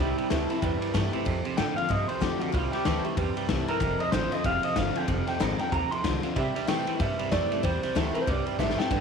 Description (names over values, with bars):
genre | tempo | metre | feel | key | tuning
rockabilly | 188 BPM | 4/4 | swing 60% on 8ths | C mixolydian | A4 = 440 Hz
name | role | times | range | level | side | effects
electric guitar through a small old amp | melody | 0.0-9.0 s | E4 to C6 | -30 LUFS | right 1 dB | tape echo
picked steel-string acoustic guitar | accompaniment | 0.0-9.0 s | F2 to F4 | -32 LUFS | left 10 dB | none
twangy electric guitar | riff | 0.0-9.0 s | F2 to A3 | -32 LUFS | right 13 dB | analog chorus
upright bass | bass | 0.0-9.0 s | F1 to C3 | -32 LUFS | equal | none
raw garage drum kit | drums | 0.2-9.0 s | crash cymbal, kick drum, ride cymbal, snare drum | -32 LUFS | left 4 dB | none
room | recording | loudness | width
light reverb, small room ambience | 1960s-style stereo with parts hard left and right | -25 LUFS | side -6 dB against mid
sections
0.0-9.0 A section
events
clean electric guitar solo 0.0-9.0; drum fill 8.6-8.9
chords
0.0 C; 1.3 F; 2.5 C; 3.8 F; 5.1 Fm7; 6.4 C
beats
0.31 0.63 0.95 | 1.26 1.58 1.90 2.22 | 2.54 2.86 3.18 3.50 | 3.81 4.13 4.45 4.77 | 5.09 5.41 5.73 6.04 | 6.36 6.68 7.00 7.32 | 7.64 7.96 8.28 8.59 | 8.91